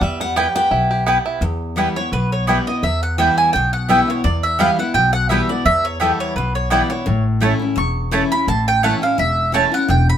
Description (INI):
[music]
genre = bluegrass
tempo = 170 BPM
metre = 4/4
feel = swing 55% on 8ths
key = E dorian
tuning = A4 = 440 Hz
[part]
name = bluegrass banjo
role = melody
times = 0.0-1.4 s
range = G3 to G4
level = -23 LUFS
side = right 4 dB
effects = none
[part]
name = picked steel-string acoustic guitar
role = accompaniment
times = 0.0-10.2 s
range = E2 to G5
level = -22 LUFS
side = left 2 dB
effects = none
[part]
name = upright bass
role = bass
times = 0.0-10.1 s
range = E1 to E2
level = -21 LUFS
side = equal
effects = none
[part]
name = mandolin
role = stabs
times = 0.4-9.6 s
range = A3 to A5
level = -18 LUFS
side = right 1 dB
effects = none
[part]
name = mandolin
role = melody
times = 2.0-10.2 s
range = A4 to C#6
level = -18 LUFS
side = right 2 dB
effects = none
[sound]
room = light reverb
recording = minimal, uncompressed stereo recording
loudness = -15 LUFS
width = side -9 dB against mid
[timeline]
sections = 0.0-1.4 A section; 1.4-10.2 A section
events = steel-string acoustic guitar solo 0.0-1.4; mandolin solo 1.4-10.2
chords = 0.0 Em; 7.1 A